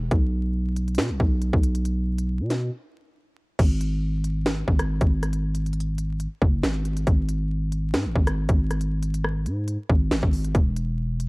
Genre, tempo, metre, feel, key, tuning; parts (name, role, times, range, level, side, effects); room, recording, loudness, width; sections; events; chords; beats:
hip hop, drill; 138 BPM; 4/4; half-time; G# minor; A4 = 439 Hz
growling 808-style bass; bass; 0.0-11.3 s; E1 to B2; -24 LUFS; equal
drill drum kit; drums; 0.1-11.3 s; crash cymbal, finger snaps, hi-hat, kick drum, rim click, snare drum; -22 LUFS; equal
little or no reverb; dark, warm production, vinyl crackle; -22 LUFS; side -28 dB against mid
0.0-3.6 A section; 3.6-11.3 B section
break 2.7-3.6
| 0.11 0.55 0.98 1.42 | 1.85 2.29 2.72 3.16 | 3.59 4.03 4.46 4.89 | 5.33 5.76 6.20 6.63 | 7.07 7.50 7.94 8.37 | 8.81 9.24 9.68 10.11 | 10.55 10.98